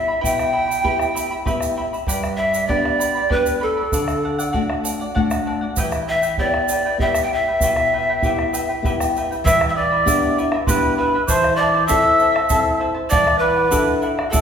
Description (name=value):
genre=andean folk, Andean ensemble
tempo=98 BPM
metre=3/4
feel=straight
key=E minor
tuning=A4 = 437 Hz
part: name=breathy bright large pan pipes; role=melody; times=0.0-14.4 s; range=A4 to G5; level=-20 LUFS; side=equal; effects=none
part: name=mellow hollow large quena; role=second line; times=0.0-14.4 s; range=A4 to E6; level=-23 LUFS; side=right 2 dB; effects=none
part: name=charango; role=accompaniment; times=0.0-14.4 s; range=E4 to B5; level=-24 LUFS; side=left 2 dB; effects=none
part: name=nylon-string guitar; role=accompaniment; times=0.0-14.4 s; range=G2 to F#5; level=-25 LUFS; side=left 2 dB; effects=none
part: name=bombo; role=percussion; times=0.2-14.4 s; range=none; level=-25 LUFS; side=right 1 dB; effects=none
part: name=egg shaker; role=percussion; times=0.3-14.4 s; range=none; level=-30 LUFS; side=right 5 dB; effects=none
room=wet recital hall reverb, RT60 1.7 s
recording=recorded in a church or concert hall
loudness=-16 LUFS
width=side -7 dB against mid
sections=0.0-9.5 A section; 9.5-14.4 B section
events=nylon-string guitar fill 4.8-5.8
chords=0.0 Em; 2.1 G; 3.9 D; 5.8 Em; 9.5 G/E; 11.3 Am/E; 13.1 D/E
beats=| 0.23 0.85 1.46 | 2.08 2.69 3.31 | 3.93 4.54 5.16 | 5.77 6.39 7.00 | 7.62 8.23 8.84 | 9.45 10.07 10.68 | 11.29 11.90 12.51 | 13.12 13.73 14.33